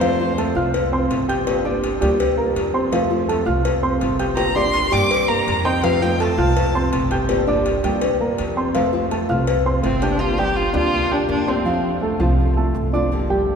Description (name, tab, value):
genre	latin, Cuban son and guajira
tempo	165 BPM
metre	4/4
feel	straight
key	unclear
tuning	A4 = 439 Hz
part	warm violin	melody	0.0-0.6, 4.4-7.1, 9.8-12.0 s	C4 to D6	-24 LUFS	equal	none
part	hollow-body jazz guitar	second line	0.0-0.6, 4.4-7.1, 9.8-12.0 s	A3 to Bb4	-32 LUFS	right 1 dB	none
part	nylon-string guitar	accompaniment	0.0-13.6 s	C3 to G4	-25 LUFS	left 2 dB	none
part	dark grand piano	arpeggios	0.0-13.6 s	F3 to G6	-22 LUFS	right 2 dB	none
part	upright bass	bass	0.0-13.6 s	G1 to G2	-24 LUFS	right 1 dB	none
part	cowbell	percussion	0.0-10.2 s	none	-24 LUFS	left 4 dB	none
room	wet cathedral reverb, RT60 5.2 s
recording	recorded in a church or concert hall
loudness	-17 LUFS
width	side -6 dB against mid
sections	0.0-10.2 A section; 10.2-13.6 B section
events	none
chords	0.0 F; 1.5 Gm7; 2.9 F; 4.4 Gm7; 5.8 F; 7.3 Gm7; 8.7 F; 10.2 Gm7; 11.7 F